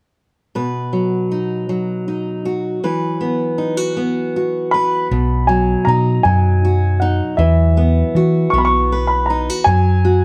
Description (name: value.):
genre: folk.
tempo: 53 BPM (dotted quarters).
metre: 6/8.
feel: straight.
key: B major.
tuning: A4 = 439 Hz.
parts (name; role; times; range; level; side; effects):
fingerpicked steel-string acoustic guitar; accompaniment; 0.6-10.2 s; B2 to B4; -21 LUFS; equal; none.
warm upright piano; melody; 4.7-10.2 s; E5 to C#6; -20 LUFS; equal; none.
hollow-body short-scale fingered electric bass; bass; 5.1-10.2 s; B1 to E3; -18 LUFS; equal; none.
room: moderate large studio reverb, RT60 1.1 s.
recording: band playing live in one room.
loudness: -17 LUFS.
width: mono.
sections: 0.6-5.1 A section; 5.1-10.2 B section.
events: none.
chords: 0.6 B; 2.8 Esus2; 5.1 B; 7.4 Esus2; 9.7 F#sus2.